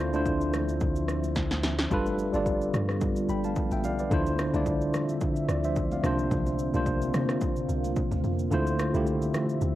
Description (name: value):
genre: amapiano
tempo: 109 BPM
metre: 4/4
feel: swing 55% on 16ths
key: D minor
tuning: A4 = 439 Hz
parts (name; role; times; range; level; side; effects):
- tine electric piano; accompaniment; 0.0-9.8 s; C3 to B5; -28 LUFS; equal; overdrive, medium stereo tremolo, cassette tape
- deep dark ambient pad; sustained chords; 0.0-9.8 s; D3 to E5; -34 LUFS; equal; chorus, built-in reverb, sidechain pumping, cassette tape
- sub bass with octave; bass; 0.0-1.9 s; D2; -32 LUFS; equal; none
- deep house drum kit; drums; 0.1-9.8 s; kick drum, rim click, shaker, snare drum; -32 LUFS; equal; none
- congas; percussion; 0.1-9.5 s; none; -40 LUFS; right 1 dB; none
- deep log drum bass; bass; 1.9-9.8 s; G1 to C3; -31 LUFS; equal; none
room: light reverb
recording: home recording on cassette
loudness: -25 LUFS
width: side -14 dB against mid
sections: 0.0-9.8 A section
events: drum fill 1.4-1.9; kick muted 8.5-9.8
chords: 0.0 Dm9; 1.9 G7; 4.1 Dm9; 6.0 C9sus4; 8.5 Dm9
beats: 0.26 0.81 1.36 | 1.91 2.46 3.01 3.56 | 4.11 4.66 5.21 5.76 | 6.31 6.86 7.42 7.96 | 8.52 9.07 9.62